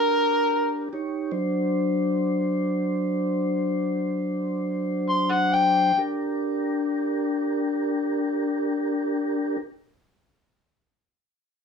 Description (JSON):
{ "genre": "blues", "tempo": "free time", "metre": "none", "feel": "none", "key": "G minor", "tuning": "A4 = 440 Hz", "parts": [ { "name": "overdriven harmonica", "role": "melody", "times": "0.0-6.0 s", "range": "Bb4 to C6", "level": "-20 LUFS", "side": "left 1 dB", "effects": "none" }, { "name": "mellow tonewheel organ", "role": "sustained chords", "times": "0.0-9.6 s", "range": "F#3 to C#5", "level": "-24 LUFS", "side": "left 1 dB", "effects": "slow rotary speaker" } ], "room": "wet studio reverb, RT60 0.6 s", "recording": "small room ambience", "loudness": "-22 LUFS", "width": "side -6 dB against mid", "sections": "0.0-6.0 A section; 6.0-11.6 B section", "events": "slowing down 0.0-6.0; harmonica solo 0.0-6.0", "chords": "0.0 Gm; 0.9 D7; 6.0 Gm" }